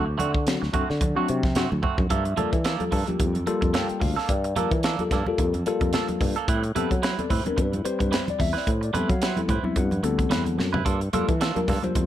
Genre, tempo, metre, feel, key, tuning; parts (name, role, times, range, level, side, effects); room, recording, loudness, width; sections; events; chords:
electric jazz fusion; 110 BPM; 4/4; swing 56% on 16ths; G dorian; A4 = 440 Hz
clean electric guitar; stabs; 0.0-12.0 s; F3 to B4; -30 LUFS; right 7 dB; wide subtle chorus, analog delay
sustaining fretless electric bass; bass; 0.0-12.1 s; D2 to F#3; -27 LUFS; equal
tine electric piano; accompaniment; 0.1-12.1 s; F#3 to G5; -28 LUFS; left 4 dB; phaser
tight funk drum kit; drums; 0.2-12.1 s; hi-hat, kick drum, snare drum, toms; -26 LUFS; equal
congas; percussion; 0.2-12.0 s; -32 LUFS; right 2 dB
light reverb, studio reverb; -22 LUFS; side -12 dB against mid
0.0-2.1 A section; 2.1-12.1 B section
drum fill 1.8, 10.5-10.9
0.0 D7; 2.1 Gm9; 6.5 Am9; 10.9 Gm9